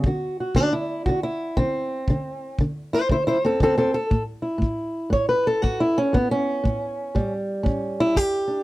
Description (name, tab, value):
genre	acoustic country blues, solo or duo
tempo	118 BPM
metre	4/4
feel	swing 64% on 8ths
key	unclear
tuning	A4 = 441 Hz
part	fingerpicked old ladder-braced acoustic guitar	melody	0.0-8.6 s	E2 to C#5	-21 LUFS	equal	none
part	kick drum	drums	0.0-8.3 s	none	-23 LUFS	equal	none
room	little or no reverb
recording	dry, close 1970s-style studio recording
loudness	-20 LUFS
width	side -18 dB against mid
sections	0.0-8.6 A section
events	steel-string acoustic guitar solo 0.0-8.6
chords	0.0 D7; 4.1 A7